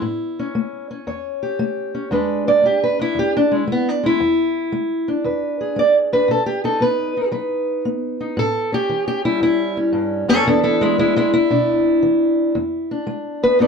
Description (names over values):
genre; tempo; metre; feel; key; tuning
acoustic country blues, solo or duo; 115 BPM; 4/4; swing 68% on 8ths; E mixolydian; A4 = 440 Hz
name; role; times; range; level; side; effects
fingerpicked steel-string acoustic guitar; solo; 0.0-13.7 s; E2 to D5; -16 LUFS; equal; none
room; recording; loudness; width
moderate small room ambience, RT60 0.5 s; dark, warm production; -16 LUFS; side -5 dB against mid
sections
0.0-13.7 A section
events
steel-string acoustic guitar solo 0.0-13.7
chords
0.0 A7; 2.1 E7; 6.3 B; 8.4 A7; 10.5 E7